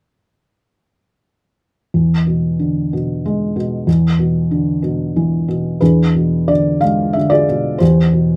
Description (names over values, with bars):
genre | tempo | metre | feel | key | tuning
classical, lyrical solo piano | 92 BPM | 3/4 | rubato | unclear | A4 = 440 Hz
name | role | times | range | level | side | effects
felt-muted upright piano | solo | 1.9-8.4 s | E2 to F5 | -16 LUFS | equal | none
room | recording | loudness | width
light reverb | close, detailed microphones | -16 LUFS | mono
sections
1.9-5.8 A section; 5.8-8.4 B section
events
none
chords
1.9 E7; 3.9 Bmadd11/E; 5.8 E7b9; 7.8 Cmaj7/E